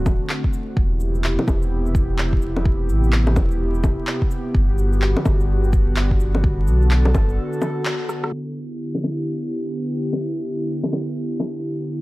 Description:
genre	future garage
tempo	127 BPM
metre	4/4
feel	swing 62% on 16ths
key	E minor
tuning	A4 = 440 Hz
part	airy breathy pad	sustained chords	0.0-12.0 s	C3 to A4	-25 LUFS	equal	chorus, sidechain pumping
part	warm sub bass	bass	0.0-7.4 s	D1 to B1	-19 LUFS	equal	sidechain pumping
part	electronic bongos, shaker, handclaps and rim click	drums	0.1-11.5 s	none	-25 LUFS	left 1 dB	low-pass filter on perc, small room ambience, low-pass filter on snare
part	electronic kick drum	drums	0.1-7.3 s	none	-20 LUFS	equal	small room ambience
room	light reverb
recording	vinyl crackle, low-pass filter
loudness	-18 LUFS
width	side -19 dB against mid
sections	0.0-8.3 A section; 8.3-12.0 B section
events	break 7.4-8.3; band accent 7.9; drum fill 8.1; filter sweep on drum 8.3-12.0; filter sweep 8.3-12.0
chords	0.0 D7; 0.8 Cmaj7/E; 4.5 Gmaj7; 8.3 Em7

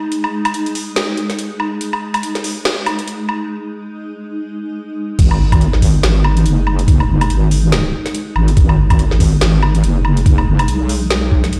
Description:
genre	deep dubstep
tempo	142 BPM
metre	4/4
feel	swing 58% on 16ths, half-time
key	G# minor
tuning	A4 = 440 Hz
part	granular cloud pad	sustained chords	0.0-11.6 s	G#3 to D#4	-26 LUFS	equal	built-in reverb
part	garage drum kit	drums	0.1-11.6 s	crash cymbal, hi-hat, snare drum, woodblock	-23 LUFS	equal	overdrive
part	wobble bass	bass	5.2-11.6 s	F#1 to B1	-16 LUFS	equal	chorus
part	electronic kick drum	drums	5.2-11.4 s	none	-15 LUFS	equal	none
room	moderate echo chamber reverb, RT60 1.5 s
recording	played on a big sound system in a bare room, stone room reverb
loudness	-15 LUFS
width	mono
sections	0.0-5.2 A section; 5.2-11.6 B section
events	build-up 0.0-5.2; break 3.5-5.2; drop 5.2-11.6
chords	0.0 G#5; 5.2 G#m

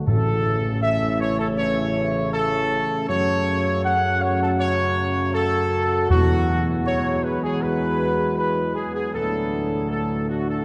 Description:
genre	classical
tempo	79 BPM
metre	4/4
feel	straight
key	A major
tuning	A4 = 440 Hz
part	mellow French horn section	sustained chords	0.0-10.6 s	G#3 to F#4	-32 LUFS	equal	none
part	warm trombone section	sustained chords	0.0-10.6 s	A2 to F#3	-32 LUFS	equal	none
part	mellow tuba	bass	0.0-10.6 s	A1 to F#2	-28 LUFS	equal	none
part	clear trumpet section	melody	0.1-10.6 s	F#4 to F#5	-25 LUFS	equal	none
part	timpani	percussion	0.1-1.2, 6.1-7.2 s	E2 to A2	-26 LUFS	equal	none
room	wet cathedral reverb, RT60 4.9 s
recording	dark, warm production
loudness	-22 LUFS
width	mono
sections	0.0-10.6 A section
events	none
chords	0.1 A; 3.1 F#m; 6.1 Eadd9; 9.1 D

